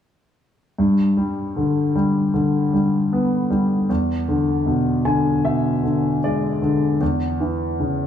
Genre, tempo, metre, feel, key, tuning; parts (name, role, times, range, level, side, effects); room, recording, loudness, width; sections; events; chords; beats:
pop; 77 BPM; 4/4; straight; G major; A4 = 441 Hz
clear concert grand piano; accompaniment; 0.8-8.1 s; E2 to G#5; -18 LUFS; left 1 dB
moderate lush hall reverb, RT60 2.1 s; small room ambience; -18 LUFS; side -9 dB against mid
0.8-8.1 A section
grand piano fill 4.7-7.0
0.8 G; 3.9 E7; 7.0 C#m/E
| 0.78 1.56 2.34 3.12 | 3.90 4.68 5.46 6.24 | 7.01 7.79